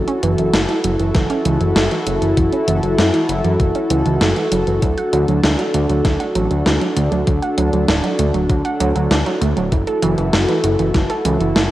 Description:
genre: synthwave.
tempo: 98 BPM.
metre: 4/4.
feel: straight.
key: F# minor.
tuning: A4 = 437 Hz.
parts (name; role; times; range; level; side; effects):
warm analog pad; sustained chords; 0.0-11.7 s; D4 to A4; -20 LUFS; equal; chorus, cassette tape.
warbly dusty pluck; arpeggios; 0.0-11.6 s; E3 to F#5; -22 LUFS; right 4 dB; chorus, cassette tape, tape echo.
fat analog bass; bass; 0.0-11.7 s; D1 to F#2; -19 LUFS; left 1 dB; sidechain pumping.
gated 80s digital drum machine; drums; 0.1-11.7 s; hi-hat, snare drum; -20 LUFS; equal; gated reverb, gated reverb snare, cassette tape.
electronic kick drum; drums; 1.1-11.1 s; none; -19 LUFS; left 1 dB; cassette tape.
room: moderate lush hall reverb, RT60 2.0 s, digital ambience.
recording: home recording on cassette.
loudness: -14 LUFS.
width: side -15 dB against mid.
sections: 0.0-11.7 A section.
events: none.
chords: 0.0 F#m7; 4.8 D; 9.7 F#m7.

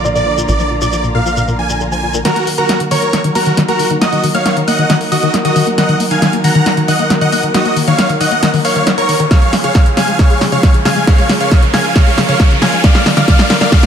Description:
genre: uplifting trance.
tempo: 136 BPM.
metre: 4/4.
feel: straight.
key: Eb minor.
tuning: A4 = 440 Hz.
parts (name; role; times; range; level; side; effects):
big supersaw lead; melody; 0.0-13.9 s; Gb4 to Bb5; -16 LUFS; right 1 dB; sidechain pumping, tape echo.
dark baby grand piano; second line; 0.0-2.2 s; D5; -23 LUFS; right 3 dB; none.
muted studio string section; sustained chords; 0.0-13.9 s; Db3 to Bb5; -20 LUFS; right 1 dB; sidechain pumping.
tight sequenced synth; arpeggios; 0.0-13.9 s; Bb2 to Bb3; -18 LUFS; left 3 dB; chorus, phaser, sidechain pumping, tape echo.
tight sequencer bass; bass; 0.0-2.2 s; Bb1; -21 LUFS; equal; sidechain pumping.
shekere; percussion; 0.0-2.2 s; none; -26 LUFS; left 2 dB; none.
plucky unison lead; second line; 2.2-13.9 s; Bb5 to Bb6; -22 LUFS; equal; sidechain pumping, tape echo.
punchy analog drum machine; drums; 2.2-13.9 s; hi-hat, snare drum; -16 LUFS; equal; none.
riser; sound effects; 6.1-13.9 s; none; -24 LUFS; equal; none.
electronic kick drum; drums; 9.3-13.8 s; none; -10 LUFS; equal; none.
room: moderate lush hall reverb, RT60 2.1 s.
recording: none.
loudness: -10 LUFS.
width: side -8 dB against mid.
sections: 0.0-2.3 A section; 2.3-13.9 B section.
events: filter sweep on synth arpeggio sound 0.0-2.3, 2.3-13.9; build-up 2.3-13.9; drum fill 2.3-13.9; riser 6.1-13.9.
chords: 0.0 Bb; 2.3 Ebm; 9.3 Db; 12.8 Bb.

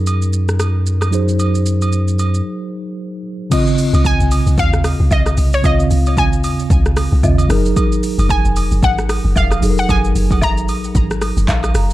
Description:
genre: amapiano.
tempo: 113 BPM.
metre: 4/4.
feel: swing 58% on 16ths.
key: Db major.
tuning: A4 = 439 Hz.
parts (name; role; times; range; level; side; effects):
mellow tine electric piano; accompaniment; 0.0-11.9 s; Db3 to Bb5; -20 LUFS; right 1 dB; medium stereo tremolo, low-pass filter.
warm sub bass; bass; 0.0-2.4 s; Gb2; -15 LUFS; equal; none.
deep house drum kit; drums; 0.1-11.9 s; crash cymbal, handclaps, hi-hat, kick drum, rim click, shaker; -18 LUFS; equal; overdrive.
agogo bells and woodblock; percussion; 0.1-11.7 s; none; -28 LUFS; right 3 dB; none.
deep log drum bass; bass; 3.9-11.9 s; F1 to Eb2; -16 LUFS; equal; none.
glassy wavetable pluck; melody; 4.1-11.2 s; Db5 to Bb5; -21 LUFS; equal; chorus, digital delay.
room: little or no reverb.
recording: dark, warm production.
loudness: -13 LUFS.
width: side -16 dB against mid.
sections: 0.0-3.5 A section; 3.5-11.9 B section.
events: filter sweep on tine electric piano 0.0-3.5; break 2.5-3.5; drop 3.5-11.9; tine electric piano fill 11.2-11.9.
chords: 0.0 Gb69; 3.5 Dbmaj9; 7.5 Gb69.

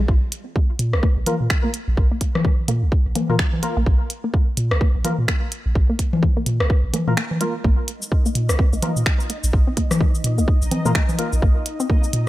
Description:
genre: minimal techno.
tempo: 127 BPM.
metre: 4/4.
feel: swing 60% on 16ths.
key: unclear.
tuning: A4 = 440 Hz.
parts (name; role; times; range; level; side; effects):
punchy sub bass; bass; 0.0-12.3 s; Bb1 to Bb2; -21 LUFS; equal; sidechain pumping.
electronic kick drum; drums; 0.1-12.0 s; none; -18 LUFS; equal; none.
minimal click drum kit; drums; 0.3-12.2 s; finger snaps, hi-hat, shaker; -26 LUFS; right 1 dB; overdrive.
resonant blip pluck; riff; 0.6-11.9 s; Ab3 to C4; -29 LUFS; left 1 dB; chorus, sidechain pumping, tape echo.
booming analog drum machine; percussion; 0.9-11.2 s; congas, rim click, toms; -24 LUFS; left 2 dB; none.
percussive organ stab; stabs; 1.3-11.3 s; Bb3 to Bb4; -28 LUFS; left 1 dB; ensemble chorus, digital delay.
bubbling stepped-filter texture; texture; 8.0-12.3 s; Eb4 to Eb5; -33 LUFS; equal; chorus, built-in reverb, sidechain pumping.
room: little or no reverb.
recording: none.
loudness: -17 LUFS.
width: side -16 dB against mid.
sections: 0.0-12.3 A section.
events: break 7.2-7.6.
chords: 0.0 Bb5.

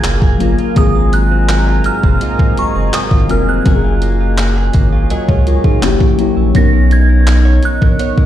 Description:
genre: contemporary R&B.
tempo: 83 BPM.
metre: 4/4.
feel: straight.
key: F# major.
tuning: A4 = 436 Hz.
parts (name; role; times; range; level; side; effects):
glassy synth bell; melody; 0.0-8.3 s; C#6 to A#6; -22 LUFS; right 3 dB; chorus, tape echo.
muted felt-like synth keys; accompaniment; 0.0-8.3 s; F#3 to D#5; -18 LUFS; left 4 dB; chorus.
deep dark ambient pad; sustained chords; 0.0-8.3 s; G#4 to C#6; -24 LUFS; left 2 dB; chorus, built-in reverb.
direct-recorded clean electric guitar; arpeggios; 0.0-8.3 s; G#2 to C#5; -22 LUFS; right 8 dB; tape echo.
saturated sub bass; bass; 0.0-8.0 s; E#1 to C#2; -13 LUFS; equal; none.
gated 80s digital drum machine; drums; 0.0-8.3 s; handclaps, hi-hat, kick drum; -14 LUFS; equal; gated reverb, overdrive.
room: digital ambience.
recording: played on a big sound system in a bare room, large studio reverb.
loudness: -10 LUFS.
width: side -12 dB against mid.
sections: 0.0-8.3 A section.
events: none.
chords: 0.0 F#maj9; 0.8 G#13; 3.7 F#maj9; 5.8 F#7b9; 6.5 Bmaj9.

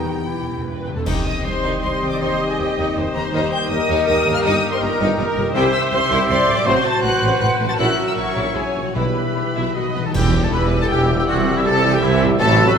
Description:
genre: classical, dramatic, fast romantic movement for symphony orchestra.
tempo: 160 BPM.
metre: 3/4.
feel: rubato.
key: C minor, E minor from 5.6 s.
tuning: A4 = 442 Hz.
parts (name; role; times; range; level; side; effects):
rich symphonic violin section; melody; 0.0-12.8 s; E5 to A6; -25 LUFS; left 2 dB; none.
rich symphonic violin section; second line; 0.0-12.7 s; A3 to G5; -26 LUFS; left 3 dB; none.
warm clarinet; second line; 0.0-12.8 s; D#4 to G4; -30 LUFS; left 1 dB; none.
warm symphonic viola section; accompaniment; 0.0-12.8 s; E3 to E5; -25 LUFS; right 2 dB; none.
mellow French horn section; sustained chords; 0.0-12.8 s; Bb3 to G4; -28 LUFS; left 3 dB; none.
concert harp; arpeggios; 0.0-12.8 s; G2 to C#5; -29 LUFS; left 6 dB; none.
clear symphonic cello section; bass; 0.0-12.7 s; C2 to E3; -27 LUFS; right 2 dB; none.
rich symphonic double bass section; bass; 0.0-12.7 s; E1 to E2; -26 LUFS; right 3 dB; none.
timpani; percussion; 0.0-1.0, 9.0-10.7 s; E2 to B2; -26 LUFS; right 2 dB; none.
flute section; second line; 0.9-12.8 s; F#4 to E6; -25 LUFS; left 2 dB; none.
warm oboe; second line; 1.1-12.8 s; E4 to E5; -26 LUFS; right 2 dB; none.
warm trombone section; sustained chords; 1.1-12.8 s; C3 to A3; -29 LUFS; right 2 dB; none.
warm tuba; bass; 1.1-12.7 s; E1 to Eb2; -27 LUFS; right 4 dB; none.
clash cymbals, concert bass drum and cymbal swell; percussion; 1.1-1.8, 7.8-10.9 s; none; -29 LUFS; equal; none.
room: wet scoring stage reverb, RT60 1.8 s.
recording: minimal, uncompressed stereo recording.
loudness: -16 LUFS.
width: side -7 dB against mid.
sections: 0.0-1.1 A section; 1.1-10.1 B section; 10.1-12.8 C section.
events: timpani fill 0.0-1.1, 9.8-10.1; band accent 1.1-1.4, 10.1-10.5.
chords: 0.0 Em; 1.1 Cm; 2.2 Cm/Eb; 3.3 Eb; 4.4 Eb/G; 5.6 C; 6.7 F#dim/A; 7.8 F#7/A#; 9.0 Em/B; 10.1 Em; 11.3 C.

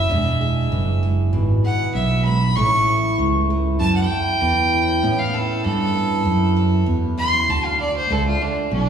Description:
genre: honky-tonk and classic country.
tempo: 97 BPM.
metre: 4/4.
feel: straight.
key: unclear.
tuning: A4 = 439 Hz.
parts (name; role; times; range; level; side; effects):
clear fiddle; melody; 0.0-8.9 s; D4 to C#6; -21 LUFS; right 1 dB; none.
picked steel-string acoustic guitar; accompaniment; 0.0-8.9 s; E2 to G#4; -24 LUFS; left 1 dB; none.
fretless electric bass; bass; 0.0-8.9 s; E1 to A2; -20 LUFS; right 2 dB; none.
room: wet concert hall reverb, RT60 2.0 s.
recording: recorded in a church or concert hall, studio reverb.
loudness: -17 LUFS.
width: side -8 dB against mid.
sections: 0.0-8.9 A section.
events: fiddle solo 0.0-8.9.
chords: 0.1 E7; 2.6 A; 5.0 Aadd9; 7.5 D.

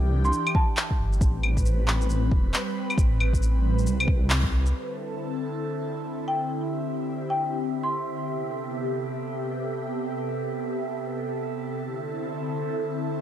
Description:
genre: future garage.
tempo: 136 BPM.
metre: 4/4.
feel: swing 63% on 16ths.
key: unclear.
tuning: A4 = 440 Hz.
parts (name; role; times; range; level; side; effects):
airy breathy pad; sustained chords; 0.0-13.2 s; C3 to B4; -30 LUFS; equal; chorus, phaser, sidechain pumping.
swelling detuned saw bass; bass; 0.0-4.7 s; E1 to C2; -23 LUFS; equal; sidechain pumping.
marimba with medium hard mallets; melody; 0.2-0.9, 6.3-8.2 s; G5 to C6; -30 LUFS; equal; vintage 12-bit sampler grit, tape echo.
electronic shaker, claves and handclaps; drums; 0.2-13.2 s; none; -28 LUFS; left 1 dB; low-pass filter on perc, low-pass filter on snare.
electronic kick drum; drums; 0.5-4.5 s; none; -24 LUFS; equal; none.
wind-like tuned noise texture; texture; 6.0-13.2 s; E5; -37 LUFS; right 3 dB; built-in reverb.
room: light reverb.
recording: none.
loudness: -24 LUFS.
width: side -10 dB against mid.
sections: 0.0-4.7 A section; 4.7-13.2 B section.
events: band accent 4.3.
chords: 0.0 C69; 1.2 Am9; 4.7 C69; 8.3 Am9; 11.8 C69.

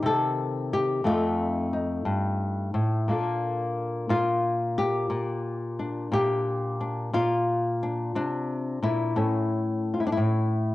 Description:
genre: solo jazz.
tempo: 59 BPM.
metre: 4/4.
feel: swing 67% on 8ths.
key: Bb major.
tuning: A4 = 440 Hz.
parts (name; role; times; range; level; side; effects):
flamenco guitar; solo; 0.0-10.7 s; F2 to A4; -24 LUFS; left 1 dB; cassette tape.
room: moderate spring reverb, RT60 1.1 s, studio reverb.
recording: home recording on cassette.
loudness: -24 LUFS.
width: side -16 dB against mid.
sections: 0.0-10.7 A section.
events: none.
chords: 0.0 Cm; 1.0 F7; 3.1 Bbmaj7; 9.2 A.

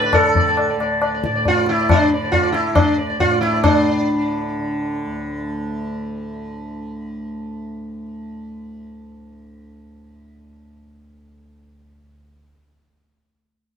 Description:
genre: indian classical, Hindustani.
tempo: 138 BPM.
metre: 4/4.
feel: straight.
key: unclear.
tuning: A4 = 439 Hz.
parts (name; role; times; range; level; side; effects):
sitar; melody; 0.0-6.8 s; D4 to D5; -18 LUFS; right 1 dB; none.
tanpura; drone; 0.0-12.2 s; D2 to D3; -27 LUFS; right 1 dB; none.
tabla; percussion; 0.0-3.8 s; none; -19 LUFS; left 3 dB; none.
room: moderate studio reverb, RT60 0.6 s.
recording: minimal, uncompressed stereo recording.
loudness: -16 LUFS.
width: side -7 dB against mid.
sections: 0.0-3.6 A section; 3.6-5.3 B section.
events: speeding up 0.0-5.3.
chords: none.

